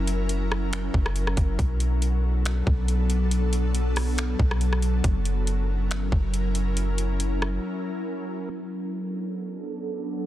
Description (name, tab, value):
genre	hip hop, atmospheric cloud-rap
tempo	139 BPM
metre	4/4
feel	half-time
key	B minor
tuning	A4 = 440 Hz
part	ethereal airy pad	sustained chords	0.0-10.3 s	F#3 to A#4	-29 LUFS	left 1 dB	ensemble chorus, built-in reverb, sidechain pumping, low-pass filter
part	warm 808-style bass	bass	0.0-7.6 s	F#1 to B1	-24 LUFS	equal	none
part	trap drum kit	drums	0.1-7.5 s	finger snaps, hi-hat, kick drum, rim click	-27 LUFS	equal	vintage 12-bit sampler grit, soft clipping on snare
room	digital ambience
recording	dense, heavily limited modern master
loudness	-23 LUFS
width	side -13 dB against mid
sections	0.0-8.5 A section; 8.5-10.3 B section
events	break 7.6-8.5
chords	0.0 F#7; 1.6 Bm7; 5.0 F#7; 8.5 Bm7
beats	0.29 0.72 1.16 | 1.59 2.02 2.45 2.88 | 3.31 3.75 4.18 4.61 | 5.04 5.47 5.90 6.34 | 6.77 7.20 7.63 8.06 | 8.49 8.93 9.36 9.79 | 10.22